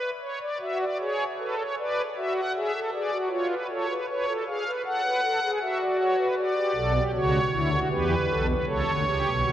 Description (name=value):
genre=classical, baroque-style 3-part fugue for pipe organ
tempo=78 BPM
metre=4/4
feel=straight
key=unclear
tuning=A4 = 443 Hz
part: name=pipe organ, strings celeste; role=solo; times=0.0-9.5 s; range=A#1 to F#5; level=-24 LUFS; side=equal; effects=none
room=wet cathedral reverb, RT60 5.5 s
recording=worn, warbling old tape, cassette tape, warbly pitch drift, nothing above 10.7 kHz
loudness=-24 LUFS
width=side -11 dB against mid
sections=0.0-9.5 A section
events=none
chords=0.2 F#m; 1.8 G#m7b5; 3.3 C#7/E#; 4.8 F#m; 6.4 Bm; 7.9 C#m7b5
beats=| 0.23 1.00 1.78 2.55 | 3.32 4.09 4.85 5.61 | 6.38 7.14 7.91 8.68 | 9.44